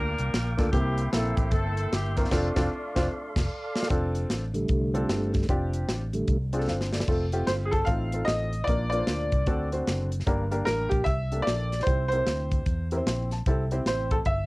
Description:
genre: uptempo gospel.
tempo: 151 BPM.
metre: 4/4.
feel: swing 63% on 8ths.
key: F major.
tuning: A4 = 440 Hz.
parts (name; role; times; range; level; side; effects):
warm horn section; melody; 0.0-3.5 s; A3 to Bb4; -34 LUFS; left 1 dB; cassette tape.
warm upright piano; accompaniment; 0.0-14.2 s; G2 to C6; -31 LUFS; equal; cassette tape.
tonewheel organ; sustained chords; 0.0-6.4 s; D3 to D6; -32 LUFS; right 1 dB; slow rotary speaker, overdrive, cassette tape.
fingered electric bass; bass; 0.0-14.5 s; F1 to E2; -29 LUFS; equal; none.
tight funk drum kit; drums; 0.2-14.4 s; crash cymbal, hi-hat, kick drum, snare drum; -28 LUFS; equal; cassette tape.
clear baby grand piano; melody; 7.5-14.5 s; G4 to F5; -28 LUFS; equal; cassette tape.
room: little or no reverb.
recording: home recording on cassette.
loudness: -24 LUFS.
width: side -22 dB against mid.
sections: 0.0-3.9 A section; 3.9-7.1 B section; 7.1-14.5 C section.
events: band accent 2.3-3.9; drum fill 3.1-3.9, 6.7-7.1; upright piano fill 3.1-3.9, 12.9-13.5; tonewheel organ solo 3.9-7.1.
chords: 0.0 Gm7; 0.7 C7; 2.3 F6; 7.1 F; 7.9 F7/A; 8.7 Bb; 9.5 D7; 10.3 Gm; 11.9 C.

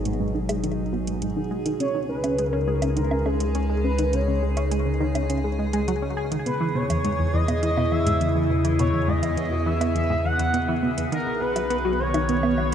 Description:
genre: ambient, sequencer-driven space music.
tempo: 103 BPM.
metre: 4/4.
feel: straight.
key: unclear.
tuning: A4 = 440 Hz.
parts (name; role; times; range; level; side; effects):
expressive synth lead; melody; 0.0-12.7 s; G#4 to F#5; -28 LUFS; equal; lush chorus, ping-pong delay.
evolving wavetable pad; sustained chords; 0.0-12.7 s; B2 to G#4; -27 LUFS; equal; phaser, built-in reverb.
warm sub bass; bass; 0.0-12.7 s; G#1 to E2; -27 LUFS; equal; none.
tight sequenced synth; riff; 0.1-12.6 s; E2 to G#4; -27 LUFS; equal; chorus, phaser, ping-pong delay.
electronic hi-hat and woodblock; percussion; 0.1-12.7 s; none; -35 LUFS; right 4 dB; ping-pong delay.
room: moderate huge ambient reverb, RT60 7.3 s.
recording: none.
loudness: -21 LUFS.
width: side -9 dB against mid.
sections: 0.0-12.7 A section.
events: none.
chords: 0.0 G#m7; 1.8 C#sus2; 6.5 E6; 11.1 B6.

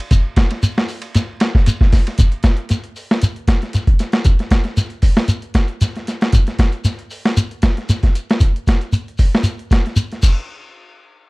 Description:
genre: afrobeat.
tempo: 116 BPM.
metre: 4/4.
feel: swing 54% on 16ths.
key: none.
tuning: none.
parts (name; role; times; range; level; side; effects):
boom bap sampler-style drum kit; drums; 0.0-10.4 s; crash cymbal, hi-hat, kick drum, ride cymbal, snare drum; -15 LUFS; equal; none.
shekere; percussion; 0.1-10.4 s; none; -17 LUFS; equal; none.
room: little or no reverb.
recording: dry, close 1970s-style studio recording.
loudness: -14 LUFS.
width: side -25 dB against mid.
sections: 0.0-2.2 A section; 2.2-10.5 B section.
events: none.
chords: none.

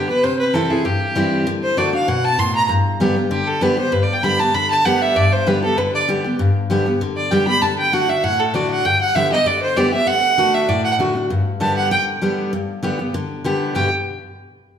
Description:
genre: bluegrass.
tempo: 195 BPM.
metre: 4/4.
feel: straight.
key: G major.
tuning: A4 = 442 Hz.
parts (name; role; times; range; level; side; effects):
clear fiddle; melody; 0.0-13.9 s; G4 to C6; -18 LUFS; right 2 dB; none.
picked steel-string acoustic guitar; accompaniment; 0.0-13.9 s; G2 to G4; -19 LUFS; left 1 dB; none.
room: wet large studio reverb, RT60 1.5 s.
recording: band playing live in one room.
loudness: -16 LUFS.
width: side -8 dB against mid.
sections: 0.0-12.5 A section; 12.5-13.7 B section; 13.7-14.8 C section.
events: none.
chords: 0.2 C; 1.5 D; 2.7 G; 7.6 D; 8.8 G; 10.1 D; 11.3 G.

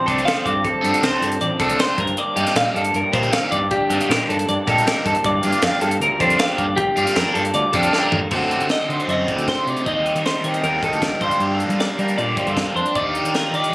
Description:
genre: math rock and midwest emo.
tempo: 156 BPM.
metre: 4/4.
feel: straight.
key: G minor.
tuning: A4 = 441 Hz.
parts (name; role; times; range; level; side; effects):
electric guitar through a small old amp; accompaniment; 0.0-13.7 s; G2 to C5; -25 LUFS; right 1 dB; none.
twelve-string electric guitar; arpeggios; 0.0-13.7 s; G4 to F5; -21 LUFS; equal; spring reverb.
biting overdriven guitar; riff; 0.1-13.7 s; G2 to A4; -22 LUFS; equal; phaser.
fuzz fingered electric bass; bass; 0.1-13.7 s; A1 to G3; -25 LUFS; equal; overdrive.
crisp fusion drum kit; drums; 0.1-13.7 s; crash cymbal, hi-hat, kick drum, snare drum, toms; -25 LUFS; equal; none.
room: little or no reverb.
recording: recorded on a phone in the room, club ambience.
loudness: -17 LUFS.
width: side -21 dB against mid.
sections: 0.0-8.3 A section; 8.3-13.7 B section.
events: drum fill 7.9-8.3.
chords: 0.0 Dm7; 2.0 Cm9/G; 5.2 Gm9; 8.3 D7b9; 9.9 Cm7/Eb; 11.2 Gm9; 13.0 Ebmaj9.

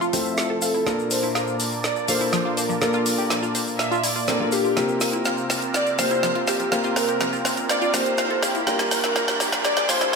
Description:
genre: progressive house.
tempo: 123 BPM.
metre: 4/4.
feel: straight.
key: unclear.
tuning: A4 = 441 Hz.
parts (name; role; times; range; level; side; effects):
warm velvety synth lead; melody; 0.0-10.2 s; G4 to F5; -26 LUFS; equal; chorus, ping-pong delay.
clear studio violin section; second line; 0.0-10.2 s; G4 to F5; -33 LUFS; right 1 dB; low-pass filter, ping-pong delay.
filtered supersaw swell; sustained chords; 0.0-10.2 s; Bb2 to A5; -30 LUFS; right 3 dB; none.
analog pluck; arpeggios; 0.0-10.2 s; F3 to F5; -29 LUFS; equal; chorus, phaser, ping-pong delay.
dark grand piano; stabs; 0.0-10.2 s; A3 to C5; -27 LUFS; left 3 dB; ping-pong delay.
tube shaker; percussion; 0.0-10.2 s; none; -34 LUFS; left 4 dB; none.
deep house drum kit; drums; 0.1-10.2 s; hi-hat, snare drum; -25 LUFS; right 1 dB; studio reverb.
riser; sound effects; 6.7-10.2 s; none; -34 LUFS; right 2 dB; none.
room: wet digital room reverb, RT60 1.1 s, small room ambience.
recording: high-pass filter.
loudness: -20 LUFS.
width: side -4 dB against mid.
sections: 0.0-10.2 A section.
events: build-up 0.0-10.2; drum fill 0.0-10.2; filter sweep on soft synth lead 0.0-10.2; filter sweep on violin section 0.0-10.2; riser 6.7-10.2.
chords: 0.0 Fmaj7; 0.9 Bbmaj7; 4.8 C7sus4; 8.7 Gm7.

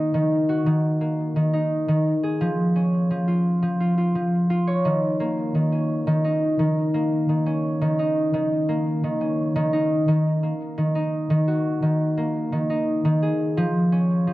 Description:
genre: folktronica.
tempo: 86 BPM.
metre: 4/4.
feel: straight.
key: unclear.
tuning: A4 = 440 Hz.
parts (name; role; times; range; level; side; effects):
concert harp; solo; 0.0-14.3 s; D#3 to C#5; -20 LUFS; equal; none.
room: moderate booth ambience, RT60 0.2 s.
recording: dry, close 1970s-style studio recording.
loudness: -20 LUFS.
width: side -17 dB against mid.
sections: 0.0-14.3 A section.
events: none.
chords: 0.0 D#m; 2.1 C#; 4.8 D#5; 10.4 D#m; 13.2 C#.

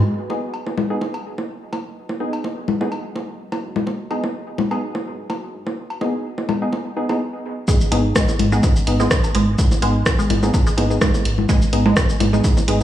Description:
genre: minimal techno.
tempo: 126 BPM.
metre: 4/4.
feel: swing 54% on 16ths.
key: G# minor.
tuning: A4 = 440 Hz.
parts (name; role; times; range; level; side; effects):
round analog bass; bass; 0.0-12.8 s; G#1; -20 LUFS; equal; sidechain pumping, high-pass filter.
deep dark ambient pad; texture; 0.0-7.2 s; F#4 to D#5; -37 LUFS; right 2 dB; none.
wavetable chord stab; stabs; 0.3-12.8 s; B3 to G#4; -25 LUFS; left 1 dB; cassette tape, dub echo.
bongos, cowbell and congas; percussion; 0.3-12.7 s; none; -25 LUFS; left 2 dB; dub echo.
resonant blip pluck; riff; 7.7-12.8 s; G#3; -24 LUFS; right 3 dB; chorus, phaser, sidechain pumping, dub echo.
electronic kick drum; drums; 7.7-12.5 s; none; -18 LUFS; equal; none.
punchy analog drum machine; drums; 7.7-12.8 s; hi-hat, rim click, shaker; -24 LUFS; equal; none.
room: light reverb.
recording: studio reverb.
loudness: -17 LUFS.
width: side -12 dB against mid.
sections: 0.1-7.7 A section; 7.7-12.8 B section.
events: stop 7.2-7.7; drop 7.7-12.8.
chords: 0.1 G#m.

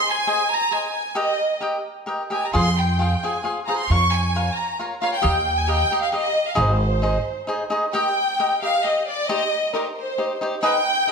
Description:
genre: mexican folk, mariachi.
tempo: 134 BPM.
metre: 3/4.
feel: straight.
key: Ab major, Eb major from 7.9 s.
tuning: A4 = 442 Hz.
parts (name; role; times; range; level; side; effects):
rich studio violin section; melody; 0.0-11.1 s; Bb4 to Db6; -22 LUFS; equal; none.
cavaquinho; accompaniment; 0.3-11.1 s; Eb4 to Ab5; -24 LUFS; equal; none.
upright bass; bass; 2.5-7.2 s; Ab1 to F2; -21 LUFS; right 1 dB; none.
room: wet recital hall reverb, RT60 1.6 s.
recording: none.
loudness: -19 LUFS.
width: side -5 dB against mid.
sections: 0.0-7.9 A section; 7.9-11.1 B section.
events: none.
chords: 0.0 Ab; 1.2 Eb; 2.5 Fm; 3.9 Bbm/F; 5.2 Ebadd9; 6.6 Ab; 7.9 Eb; 9.3 Cmadd9/Eb.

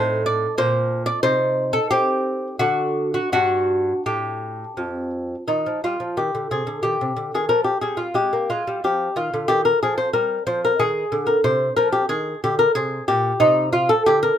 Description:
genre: classical, baroque-style dance for lute.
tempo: 82-96 BPM.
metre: 3/4.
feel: rubato.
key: G minor, C minor from 5.5 s.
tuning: A4 = 440 Hz.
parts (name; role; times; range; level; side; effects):
lute; solo; 0.0-14.4 s; F2 to D5; -18 LUFS; equal; none.
room: light reverb.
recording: minimal, uncompressed stereo recording.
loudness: -18 LUFS.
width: side -9 dB against mid.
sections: 0.0-5.5 A section; 5.5-14.4 A section.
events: none.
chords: 0.0 F7 (rootless); 0.6 Bb; 1.2 Cm6; 2.6 N.C.; 3.3 G5; 5.5 Cm; 7.5 Fm; 9.5 Abmaj13; 11.5 Cm.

